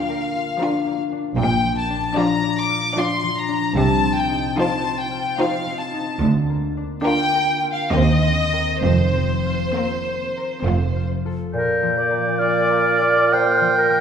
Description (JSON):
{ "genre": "classical, slow romantic movement for symphony orchestra", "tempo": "63-78 BPM", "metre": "3/4", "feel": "rubato", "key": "Bb major", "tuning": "A4 = 439 Hz", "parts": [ { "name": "rich chamber violin section", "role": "melody", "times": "0.0-11.1 s", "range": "C5 to D6", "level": "-23 LUFS", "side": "left 3 dB", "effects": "none" }, { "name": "clear chamber violin section", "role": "second line", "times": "0.0-11.3 s", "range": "F4 to D5", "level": "-29 LUFS", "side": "left 2 dB", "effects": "none" }, { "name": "rich chamber viola section", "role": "accompaniment", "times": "0.0-11.3 s", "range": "F3 to Eb4", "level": "-26 LUFS", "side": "equal", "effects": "none" }, { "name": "concert harp", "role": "arpeggios", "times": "0.0-14.0 s", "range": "Bb2 to D5", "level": "-26 LUFS", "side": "left 4 dB", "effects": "none" }, { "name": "bright chamber cello section", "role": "bass", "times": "1.4-11.4 s", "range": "D2 to C3", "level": "-24 LUFS", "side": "right 3 dB", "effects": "none" }, { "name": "rich studio double bass section", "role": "bass", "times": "1.4-11.4 s", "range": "F1 to Eb2", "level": "-23 LUFS", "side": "right 4 dB", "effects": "none" }, { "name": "bright clarinet", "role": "second line", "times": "11.5-14.0 s", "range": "Bb4 to D5", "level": "-24 LUFS", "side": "equal", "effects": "none" }, { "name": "mellow hollow concert flute", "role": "second line", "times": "11.5-14.0 s", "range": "F6 to G6", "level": "-20 LUFS", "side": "left 1 dB", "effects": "none" }, { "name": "warm bassoon", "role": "accompaniment", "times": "11.5-14.0 s", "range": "Bb2", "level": "-21 LUFS", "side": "right 2 dB", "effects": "none" }, { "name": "clear oboe", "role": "second line", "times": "12.4-14.0 s", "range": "D5 to G5", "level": "-19 LUFS", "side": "right 3 dB", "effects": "none" } ], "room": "wet concert hall reverb, RT60 2.0 s", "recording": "minimal, uncompressed stereo recording", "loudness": "-18 LUFS", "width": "side -7 dB against mid", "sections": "0.0-11.5 A section; 11.5-14.0 A section", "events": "none", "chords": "0.0 Bb/D; 1.4 Bb; 3.8 F5/C; 6.2 Bb/D; 7.9 Cm7/Eb; 8.8 Fsus4; 10.7 F; 11.5 Bb" }